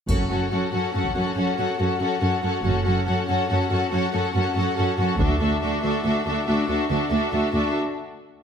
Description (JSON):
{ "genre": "cinematic, epic orchestral film score", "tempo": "94 BPM (dotted quarters)", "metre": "12/8", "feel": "straight", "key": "F# minor", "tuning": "A4 = 440 Hz", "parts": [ { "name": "rich studio violin section", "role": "second line", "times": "0.1-7.7 s", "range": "A4 to F#5", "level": "-27 LUFS", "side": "left 4 dB", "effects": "none" }, { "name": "clear symphonic viola section", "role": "accompaniment", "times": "0.1-7.7 s", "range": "C#4 to F#4", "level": "-26 LUFS", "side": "equal", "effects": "none" }, { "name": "rich symphonic cello section", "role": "bass", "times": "0.1-7.6 s", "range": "D2 to F#2", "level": "-25 LUFS", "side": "right 2 dB", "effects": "none" }, { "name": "rich symphonic double bass section", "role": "bass", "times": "0.1-5.4 s", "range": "F#1 to D2", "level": "-27 LUFS", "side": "right 2 dB", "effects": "none" }, { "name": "taiko ensemble", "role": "drums", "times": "0.1-1.2, 5.2-6.0 s", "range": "none", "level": "-28 LUFS", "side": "equal", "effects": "none" }, { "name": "triangle", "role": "percussion", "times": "0.1-0.9 s", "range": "none", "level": "-41 LUFS", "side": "left 2 dB", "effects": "none" } ], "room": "wet recital hall reverb, RT60 1.5 s", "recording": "none", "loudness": "-20 LUFS", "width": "side -7 dB against mid", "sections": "0.1-8.4 A section", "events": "break 7.7-8.4", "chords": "0.1 F#m; 5.2 Dadd9" }